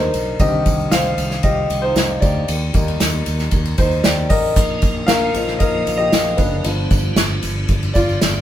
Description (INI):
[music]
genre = piano-driven pop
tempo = 115 BPM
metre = 4/4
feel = straight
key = C minor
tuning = A4 = 438 Hz
[part]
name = warm upright piano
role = accompaniment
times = 0.0-8.4 s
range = D3 to F5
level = -19 LUFS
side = left 1 dB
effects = none
[part]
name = fretless electric bass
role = bass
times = 0.0-8.4 s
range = F#1 to Eb2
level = -22 LUFS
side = equal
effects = none
[part]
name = unplugged drum kit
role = drums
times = 0.1-8.3 s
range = hi-hat, kick drum, ride cymbal, snare drum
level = -19 LUFS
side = equal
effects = none
[part]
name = tambourine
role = percussion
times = 0.1-8.3 s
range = none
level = -34 LUFS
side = right 7 dB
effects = none
[part]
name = tonewheel organ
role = sustained chords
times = 4.6-8.4 s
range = F3 to F4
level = -28 LUFS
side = right 3 dB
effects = overdrive, chorus vibrato, slow rotary speaker
[sound]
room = moderate studio reverb, RT60 0.8 s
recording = band playing live in one room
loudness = -15 LUFS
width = side -11 dB against mid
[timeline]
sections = 0.0-8.4 A section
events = upright piano solo 0.0-8.4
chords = 0.4 Cmadd9; 2.5 Eb; 4.6 Bbsus4; 6.7 G7